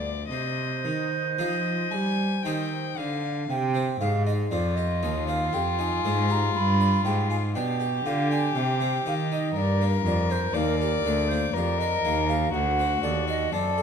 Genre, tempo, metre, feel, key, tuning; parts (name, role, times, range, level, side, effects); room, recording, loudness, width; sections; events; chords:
classical, baroque-style sonata movement with continuo; 60 BPM; 3/4; rubato; C minor; A4 = 440 Hz
warm violin; melody; 0.0-13.8 s; F4 to Ab5; -30 LUFS; left 8 dB
bright baroque flute; second line; 0.0-13.8 s; Bb4 to B5; -29 LUFS; right 6 dB
harpsichord; accompaniment; 0.0-13.8 s; D2 to A4; -32 LUFS; left 2 dB
rich cello; bass; 0.0-13.8 s; D2 to G3; -27 LUFS; right 1 dB
moderate recital hall reverb, RT60 1.8 s; -23 LUFS; side -7 dB against mid
0.0-3.5 A section; 3.5-13.8 B section
0.3 Cm; 6.5 G7; 8.6 Cm; 9.6 Gm; 12.5 D7